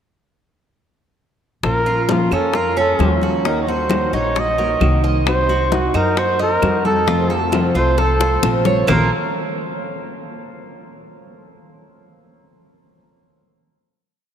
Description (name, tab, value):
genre	latin, Cuban son and guajira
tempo	132 BPM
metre	4/4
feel	straight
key	Bb harmonic minor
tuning	A4 = 439 Hz
part	trumpet with bucket mute	melody	1.6-9.1 s	F4 to Eb5	-20 LUFS	right 1 dB	none
part	nylon-string guitar	accompaniment	1.6-9.1 s	Bb2 to Gb4	-23 LUFS	left 2 dB	none
part	upright bass	bass	1.6-9.1 s	Bb1 to Gb2	-21 LUFS	equal	none
part	bongos	percussion	1.6-9.0 s	none	-27 LUFS	left 7 dB	none
part	claves	percussion	1.6-9.0 s	none	-33 LUFS	right 8 dB	none
part	congas	percussion	1.6-9.0 s	none	-26 LUFS	left 2 dB	none
part	Cuban tres	arpeggios	1.9-9.1 s	Bb3 to Eb5	-23 LUFS	right 3 dB	none
room	wet cathedral reverb, RT60 5.4 s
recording	in a vast, echoing space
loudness	-15 LUFS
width	side -8 dB against mid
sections	1.6-8.9 verse; 8.9-10.7 final chord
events	drum fill 8.0-8.9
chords	1.6 Bbm; 3.5 Ebm; 5.3 Cdim; 7.1 F; 8.9 Bb5